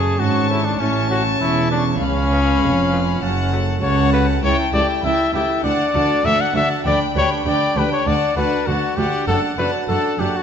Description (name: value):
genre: classical, baroque-style concerto movement with solo episodes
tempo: 99 BPM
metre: 4/4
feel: straight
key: D major from 4.4 s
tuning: A4 = 440 Hz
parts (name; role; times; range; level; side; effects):
- clear trumpet; melody; 0.0-10.4 s; C#4 to F#5; -21 LUFS; left 4 dB; none
- rich chamber violin section; melody; 0.0-10.4 s; A5 to C#6; -30 LUFS; left 3 dB; none
- rich chamber violin section; second line; 0.0-10.4 s; E#5 to A5; -25 LUFS; equal; none
- dark chamber viola section; accompaniment; 0.0-10.4 s; C#4 to E4; -24 LUFS; equal; none
- lute; accompaniment; 0.0-10.4 s; D2 to G4; -28 LUFS; equal; none
- rich chamber double bass section; bass; 0.0-10.3 s; E1 to D2; -24 LUFS; right 3 dB; none
- warm chamber cello section; bass; 0.0-10.3 s; C#2 to A2; -23 LUFS; right 3 dB; none
room: wet recital hall reverb, RT60 1.4 s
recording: nothing above 7.8 kHz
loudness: -16 LUFS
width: side -8 dB against mid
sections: 0.0-10.4 A section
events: none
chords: 0.0 F#m; 2.0 C#7; 3.2 F#m; 4.4 A7/C#; 5.6 D; 6.9 G/D; 8.1 D; 9.3 D/F#